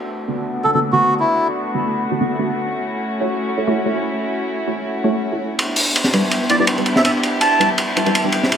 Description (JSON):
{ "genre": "drum and bass, jungle", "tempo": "164 BPM", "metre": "4/4", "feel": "swing 54% on 16ths", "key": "unclear", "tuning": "A4 = 438 Hz", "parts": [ { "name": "clear studio string section", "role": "sustained chords", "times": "0.0-8.6 s", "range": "A3 to G4", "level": "-22 LUFS", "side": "left 1 dB", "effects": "low-pass filter" }, { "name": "orchestra-hit-like synth stab", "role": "stabs", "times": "0.3-8.4 s", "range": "D3 to C#5", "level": "-22 LUFS", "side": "right 1 dB", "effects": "built-in reverb, dub echo" }, { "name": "melodica", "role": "melody", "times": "0.6-1.5, 6.5-7.7 s", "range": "E4 to A5", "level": "-19 LUFS", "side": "right 1 dB", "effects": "dub echo" }, { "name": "crunchy breakbeat drum kit", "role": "drums", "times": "5.6-8.6 s", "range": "hi-hat, ride cymbal, snare drum", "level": "-18 LUFS", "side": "equal", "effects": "none" } ], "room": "moderate plate reverb, RT60 2.0 s", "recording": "none", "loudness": "-16 LUFS", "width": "side -8 dB against mid", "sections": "0.0-8.6 A section", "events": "filter sweep on string section 0.0-8.6", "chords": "0.0 Bm7; 2.7 F#m7; 5.6 Em7" }